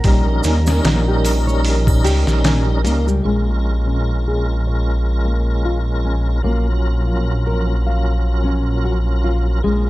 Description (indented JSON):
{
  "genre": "trip hop",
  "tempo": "75 BPM",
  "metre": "4/4",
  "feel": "swing 56% on 16ths",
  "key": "Bb minor",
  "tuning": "A4 = 440 Hz",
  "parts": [
    { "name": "felt-muted upright piano", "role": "melody", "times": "0.0-2.4 s", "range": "Bb5", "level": "-34 LUFS", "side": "equal", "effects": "none" },
    { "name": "tonewheel organ", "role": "accompaniment", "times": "0.0-9.9 s", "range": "Gb3 to Bb4", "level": "-23 LUFS", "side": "right 1 dB", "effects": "chorus vibrato, fast rotary speaker, tremolo, tape echo" },
    { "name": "dark analog pad", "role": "sustained chords", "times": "0.0-9.9 s", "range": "Bb4 to C6", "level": "-34 LUFS", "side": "right 3 dB", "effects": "none" },
    { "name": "nylon-string guitar", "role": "arpeggios", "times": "0.0-9.9 s", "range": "G3 to F5", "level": "-24 LUFS", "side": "left 2 dB", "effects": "low-pass filter, tape echo" },
    { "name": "dark detuned saw bass", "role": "bass", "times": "0.0-9.9 s", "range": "Bb1 to Eb2", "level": "-17 LUFS", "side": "equal", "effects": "none" },
    { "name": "trip hop sampler-style drum kit", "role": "drums", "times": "0.0-3.1 s", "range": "hi-hat, kick drum, snare drum", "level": "-19 LUFS", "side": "equal", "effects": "studio reverb" },
    { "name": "maracas and triangle", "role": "percussion", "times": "0.0-3.2 s", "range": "none", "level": "-32 LUFS", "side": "right 2 dB", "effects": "none" }
  ],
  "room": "studio reverb",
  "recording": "dark, warm production",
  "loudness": "-15 LUFS",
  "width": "side -17 dB against mid",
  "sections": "0.0-3.2 A section; 3.2-9.9 B section",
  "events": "filter sweep on nylon-string guitar 3.2-9.9",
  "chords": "0.0 Eb7/Bb; 3.2 Bbm7; 6.4 Gbmaj7/Bb",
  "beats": "| 0.05 0.85 1.65 2.45 | 3.25 4.05 4.85 5.65 | 6.45 7.25 8.05 8.85 | 9.65"
}